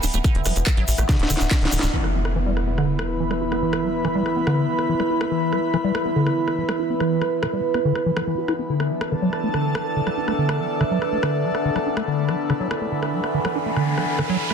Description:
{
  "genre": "psychedelic trance",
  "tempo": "142 BPM",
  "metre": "4/4",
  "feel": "straight",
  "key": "unclear",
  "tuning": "A4 = 439 Hz",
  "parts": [
    { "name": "overtone-sweeping drone", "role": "sustained chords", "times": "0.0-14.5 s", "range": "E3 to B3", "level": "-27 LUFS", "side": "right 3 dB", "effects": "chorus, built-in reverb, phaser, sidechain pumping" },
    { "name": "liquid acid bass", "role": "riff", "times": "0.0-14.5 s", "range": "C#3 to F#4", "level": "-24 LUFS", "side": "moving between left 7 dB and right 6 dB", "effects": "phaser, auto-pan, sidechain pumping, dub echo" },
    { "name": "tight sequencer bass", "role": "bass", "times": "0.0-1.9 s", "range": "D1 to A1", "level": "-22 LUFS", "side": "equal", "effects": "none" },
    { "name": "drum and bass drum kit", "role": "drums", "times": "0.0-14.5 s", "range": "handclaps, hi-hat, rim click, snare drum", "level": "-29 LUFS", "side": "equal", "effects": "soft clipping on snare" },
    { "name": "egg shaker", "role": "percussion", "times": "0.0-1.9 s", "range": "none", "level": "-31 LUFS", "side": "right 2 dB", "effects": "none" },
    { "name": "electronic kick drum", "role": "drums", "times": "0.2-1.6 s", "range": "none", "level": "-19 LUFS", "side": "equal", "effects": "none" },
    { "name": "impact and riser", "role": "sound effects", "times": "1.9-3.6, 13.0-14.5 s", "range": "none", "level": "-27 LUFS", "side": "equal", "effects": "none" },
    { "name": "airy breathy pad", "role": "texture", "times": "1.9-14.5 s", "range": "D4 to B5", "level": "-25 LUFS", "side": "left 1 dB", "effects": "chorus, sidechain pumping" }
  ],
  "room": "moderate plate reverb, RT60 2.1 s",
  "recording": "dense, heavily limited modern master",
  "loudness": "-19 LUFS",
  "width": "side -6 dB against mid",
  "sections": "0.0-1.9 A section; 1.9-14.5 B section",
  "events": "drum fill 1.1-1.9; band accent 1.8; impact 1.9-3.6; riser 13.0-14.5",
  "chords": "0.0 D5; 1.9 E5; 8.7 D5",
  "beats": "| 0.24 0.67 1.09 1.51 | 1.93 2.36 2.78 3.20 | 3.62 4.05 4.47 4.89 | 5.31 5.74 6.16 6.58 | 7.00 7.43 7.85 8.27 | 8.70 9.12 9.54 9.96 | 10.38 10.81 11.23 11.65 | 12.07 12.50 12.92 13.34 | 13.77 14.19"
}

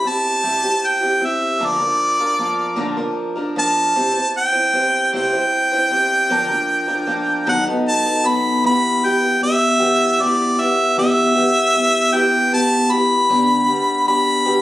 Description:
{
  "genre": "rock",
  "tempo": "51 BPM (dotted quarters)",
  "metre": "6/8",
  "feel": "straight",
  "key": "unclear",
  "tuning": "A4 = 440 Hz",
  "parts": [
    { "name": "bright harmonica", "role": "melody", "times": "0.0-14.6 s", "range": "D5 to B5", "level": "-16 LUFS", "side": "equal", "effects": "none" },
    { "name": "picked acoustic archtop guitar", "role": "accompaniment", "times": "0.0-14.6 s", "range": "G2 to C5", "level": "-20 LUFS", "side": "equal", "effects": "none" }
  ],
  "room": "moderate studio reverb, RT60 0.7 s",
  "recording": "recorded on a phone in the room, studio reverb, compression",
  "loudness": "-15 LUFS",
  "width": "side -15 dB against mid",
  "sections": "0.0-8.6 A section; 8.6-14.6 B section",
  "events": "none",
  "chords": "0.0 C; 1.6 Bb; 4.0 C; 6.3 Bb; 7.5 B7; 8.6 Em; 13.3 G",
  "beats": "0.44 | 1.62 2.79 | 3.96 5.13 | 6.30 7.47 | 8.64 9.81 | 10.98 12.14 | 13.31 14.47"
}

